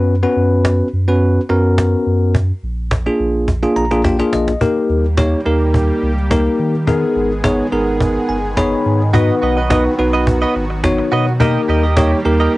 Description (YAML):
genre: dance-pop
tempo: 106 BPM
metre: 4/4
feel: straight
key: unclear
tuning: A4 = 440 Hz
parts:
  - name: bell-like tine electric piano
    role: accompaniment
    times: 0.0-12.6 s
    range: A#3 to B5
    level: -16 LUFS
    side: left 1 dB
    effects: auto-pan, cassette tape
  - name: warm sub bass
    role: bass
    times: 0.0-12.5 s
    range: G1 to D#3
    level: -17 LUFS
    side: equal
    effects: none
  - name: cajon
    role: drums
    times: 0.6-12.5 s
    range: none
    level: -18 LUFS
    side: equal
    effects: cassette tape
  - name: soft supersaw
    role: sustained chords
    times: 4.6-12.6 s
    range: D#3 to G#4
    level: -24 LUFS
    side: right 1 dB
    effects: phaser, cassette tape
  - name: direct-recorded clean electric guitar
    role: riff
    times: 9.1-12.6 s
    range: F#4 to D#5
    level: -19 LUFS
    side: right 4 dB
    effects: analog chorus, cassette tape
room: light reverb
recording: home recording on cassette, nothing above 10.7 kHz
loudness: -13 LUFS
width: side -19 dB against mid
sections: 0.0-4.6 A section; 4.6-12.6 B section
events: drum fill 3.5-4.6; tine electric piano fill 3.5-4.6, 8.0-9.1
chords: 0.0 F#sus4; 2.3 A#7; 4.6 D#; 6.9 G#madd9; 9.1 B; 11.4 D#